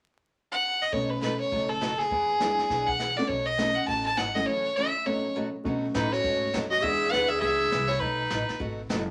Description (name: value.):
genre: country, western swing.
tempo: 203 BPM.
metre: 4/4.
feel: swing 62% on 8ths.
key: B mixolydian.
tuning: A4 = 440 Hz.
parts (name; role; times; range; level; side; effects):
clear fiddle; melody; 0.5-8.6 s; G#4 to A5; -29 LUFS; equal; none.
honky-tonk upright piano; accompaniment; 0.9-7.7 s; F#3 to F#4; -35 LUFS; equal; none.
picked steel-string acoustic guitar; accompaniment; 0.9-9.0 s; B2 to G#4; -38 LUFS; equal; none.
upright bass; bass; 0.9-9.1 s; F#1 to B2; -39 LUFS; equal; none.
jazz brush drum kit; drums; 0.9-9.1 s; brushed snare drum, hi-hat, kick drum, snare drum; -39 LUFS; equal; none.
clear clarinet; second line; 5.9-8.6 s; D#4 to B4; -31 LUFS; equal; none.
room: wet small room ambience, RT60 0.5 s.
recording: vinyl crackle.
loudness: -27 LUFS.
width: mono.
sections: 0.9-5.7 A section; 5.7-9.1 B section.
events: none.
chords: 0.0 N.C.; 0.9 B9; 2.1 E9; 3.3 B9; 4.5 F#m7; 5.1 B9; 6.8 E9; 8.0 B7.